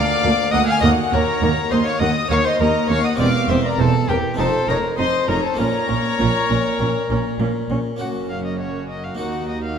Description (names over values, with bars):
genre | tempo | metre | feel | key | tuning
classical, baroque-style concerto movement with solo episodes | 101 BPM | 4/4 | straight | Bb minor | A4 = 440 Hz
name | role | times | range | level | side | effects
dark violin | melody | 0.0-9.8 s | G4 to Gb5 | -24 LUFS | left 2 dB | none
warm chamber violin section | melody | 0.0-9.8 s | Bb4 to F6 | -27 LUFS | left 4 dB | none
warm chamber violin section | second line | 0.0-9.8 s | Gb4 to Ab5 | -24 LUFS | left 3 dB | none
dark chamber viola section | accompaniment | 0.0-9.8 s | Bb3 to Eb4 | -28 LUFS | right 1 dB | none
harpsichord | accompaniment | 0.0-9.8 s | D2 to Bb4 | -25 LUFS | left 1 dB | none
warm chamber cello section | bass | 0.2-9.8 s | D2 to Bb2 | -25 LUFS | right 4 dB | none
warm chamber double bass section | bass | 0.2-9.8 s | E1 to Eb2 | -24 LUFS | right 4 dB | none
room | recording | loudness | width
wet concert hall reverb, RT60 2.3 s | minimal, uncompressed stereo recording | -17 LUFS | side -7 dB against mid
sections
0.0-8.0 A section; 8.0-9.8 B section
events
none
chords
0.0 Bb/D; 0.8 Ebm; 3.2 C7/E; 4.4 F5; 5.6 Bbm; 8.0 Gb; 9.2 Ebm